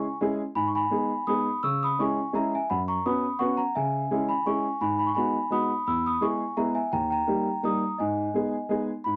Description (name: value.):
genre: musette waltz.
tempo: 169 BPM.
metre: 3/4.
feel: swing 53% on 8ths.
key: G# minor.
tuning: A4 = 440 Hz.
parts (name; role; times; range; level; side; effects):
large celesta; melody; 0.0-9.2 s; D#5 to E6; -29 LUFS; equal; none.
warm upright piano; accompaniment; 0.0-9.2 s; D#2 to B4; -30 LUFS; equal; none.
room: little or no reverb.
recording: dry, close 1970s-style studio recording.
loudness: -27 LUFS.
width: mono.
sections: 0.6-9.1 A section.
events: none.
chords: 0.0 C#m; 0.6 G#m; 1.6 C#m; 2.7 F#sus4; 3.7 C#m; 4.8 G#m7; 5.9 E; 6.9 D#; 8.0 G#m.